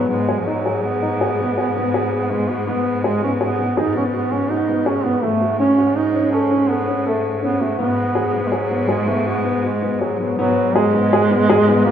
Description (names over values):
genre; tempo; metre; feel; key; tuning
contemporary instrumental, chamber music in an uneven meter; 164 BPM; 7/4; straight; G# phrygian; A4 = 440 Hz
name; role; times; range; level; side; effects
mellow duduk; second line; 0.0-11.9 s; E#3 to D#4; -20 LUFS; right 4 dB; none
warm baby grand piano; arpeggios; 0.0-11.9 s; A3 to A4; -19 LUFS; left 3 dB; none
rich cello; bass; 0.0-11.9 s; G#2; -25 LUFS; equal; none
room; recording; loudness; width
wet recital hall reverb, RT60 1.7 s; heard from further back in the room; -16 LUFS; side -9 dB against mid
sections
0.1-10.4 A section; 10.4-11.9 B section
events
none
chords
0.1 G#m; 5.2 F#m/G#; 7.8 G#m7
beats
| 0.10 0.47 0.84 1.21 1.57 1.94 2.31 | 2.67 3.04 3.41 3.77 4.14 4.50 4.87 | 5.23 5.60 5.96 6.33 6.69 7.05 7.42 | 7.79 8.15 8.52 8.89 9.26 9.64 10.01 | 10.39 10.76 11.13 11.50 11.86